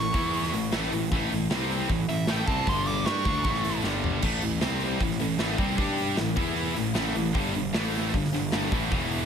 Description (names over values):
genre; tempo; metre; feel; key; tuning
hard rock; 154 BPM; 4/4; straight; unclear; A4 = 439 Hz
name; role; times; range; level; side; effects
dark smooth lead guitar; melody; 0.0-3.8 s; E5 to D6; -30 LUFS; right 2 dB; overdrive, slapback echo
high-gain distorted guitar; riff; 0.0-9.3 s; E2 to G4; -33 LUFS; right 1 dB; distortion
scooped high-gain guitar; riff; 0.0-9.3 s; E2 to G4; -32 LUFS; right 12 dB; distortion
tight distorted guitar; riff; 0.0-9.3 s; E2 to G4; -32 LUFS; left 12 dB; distortion
fuzz picked electric bass; bass; 0.0-9.3 s; E1 to G2; -31 LUFS; equal; overdrive
big rock drum kit; drums; 0.1-9.2 s; crash cymbal, hi-hat, kick drum, snare drum, toms; -30 LUFS; equal; none
room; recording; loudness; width
studio reverb; none; -24 LUFS; side -7 dB against mid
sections
0.0-4.2 A section; 4.2-9.3 B section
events
lead electric guitar solo 0.0-4.2; drum fill 3.8-4.2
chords
0.1 E5; 0.5 A5; 1.5 C5; 1.9 A5; 2.7 G5; 3.1 A; 3.8 G5; 4.2 A5; 4.6 C5; 5.0 A5; 5.8 G5; 6.2 A5; 6.4 E5; 6.8 A5; 7.4 G5; 7.7 A5; 8.1 G5